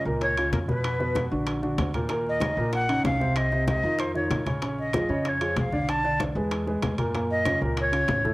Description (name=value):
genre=Afro-Cuban jazz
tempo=190 BPM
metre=4/4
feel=straight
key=unclear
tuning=A4 = 440 Hz
part: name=breathy bright concert flute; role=melody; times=0.0-8.3 s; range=A#4 to A5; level=-27 LUFS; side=equal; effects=cassette tape, analog delay
part: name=warm grand piano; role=accompaniment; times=0.0-8.3 s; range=A2 to D5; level=-27 LUFS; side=equal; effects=cassette tape
part: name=upright bass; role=bass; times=0.1-8.3 s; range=A1 to F#2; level=-32 LUFS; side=equal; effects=none
part: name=congas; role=percussion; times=0.1-8.3 s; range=none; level=-32 LUFS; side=left 1 dB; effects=none
part: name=bongos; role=percussion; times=0.2-8.2 s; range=none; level=-35 LUFS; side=left 4 dB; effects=none
part: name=timbales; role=percussion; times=0.2-8.2 s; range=none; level=-38 LUFS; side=right 3 dB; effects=none
room=moderate spring reverb, RT60 1.6 s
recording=home recording on cassette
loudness=-23 LUFS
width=side -20 dB against mid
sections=0.0-8.3 A section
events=none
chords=0.0 C#13; 0.8 Bdim; 1.5 A#aug; 2.1 D#m7; 3.4 Cmadd11; 4.0 A#madd11; 4.6 A#m7; 5.9 Bm7; 6.5 Eadd9; 7.1 F#maj7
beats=0.21 0.53 | 0.84 1.16 1.47 1.78 | 2.10 2.42 2.73 3.04 | 3.36 3.68 3.99 4.31 | 4.62 4.94 5.25 5.57 | 5.88 6.20 6.51 6.83 | 7.14 7.46 7.77 8.09